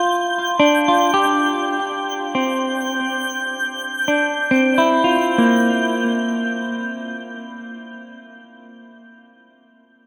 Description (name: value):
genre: ambient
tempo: 69 BPM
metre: 3/4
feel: straight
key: unclear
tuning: A4 = 440 Hz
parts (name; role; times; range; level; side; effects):
- semi-hollow electric guitar; arpeggios; 0.0-8.6 s; Bb3 to G4; -20 LUFS; equal; spring reverb, tape echo
- twinkling granular texture; texture; 0.0-5.4 s; G6; -26 LUFS; equal; built-in reverb
room: wet huge ambient reverb, RT60 7.3 s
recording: none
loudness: -18 LUFS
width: mono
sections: 0.0-5.4 A section; 5.4-8.0 B section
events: none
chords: 0.2 G5; 2.8 Dm7; 5.4 Bb5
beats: | 0.15 1.02 1.89 | 2.76 3.63 4.50 | 5.37 6.24 7.11